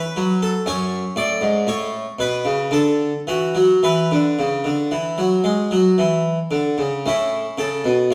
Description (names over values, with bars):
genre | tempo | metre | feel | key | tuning
classical, baroque-style suite movement for harpsichord | 52-61 BPM | 3/4 | rubato | A major | A4 = 440 Hz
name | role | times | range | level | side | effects
harpsichord | solo | 0.0-8.1 s | F#2 to D5 | -20 LUFS | equal | none
room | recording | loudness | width
wet stone room reverb, RT60 1.1 s | heard from further back in the room | -20 LUFS | mono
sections
0.0-8.1 A section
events
none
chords
0.0 A; 0.7 F#m; 2.7 D; 3.8 E5; 6.0 C#m; 7.1 A